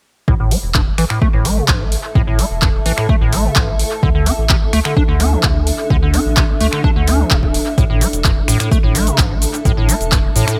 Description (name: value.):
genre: acid house.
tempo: 128 BPM.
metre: 4/4.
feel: straight.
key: unclear.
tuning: A4 = 439 Hz.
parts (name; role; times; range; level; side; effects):
liquid acid bass; riff; 0.3-10.6 s; G2 to D4; -22 LUFS; equal; analog chorus, cassette tape, analog delay.
round analog bass; bass; 0.3-10.4 s; D1 to D2; -21 LUFS; equal; tube saturation, sidechain pumping.
electronic kick drum; drums; 0.3-10.2 s; none; -18 LUFS; equal; overdrive.
granular cloud pad; texture; 1.4-10.6 s; D4 to A5; -26 LUFS; equal; built-in reverb, sidechain pumping.
punchy analog drum machine; drums; 0.5-10.6 s; finger snaps, handclaps, hi-hat, shaker; -22 LUFS; equal; overdrive, analog delay.
room: light reverb, digital ambience.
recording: echo-heavy mix.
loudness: -15 LUFS.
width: mono.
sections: 0.3-10.6 A section.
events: none.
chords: 0.3 A5; 4.0 D5; 7.8 A5.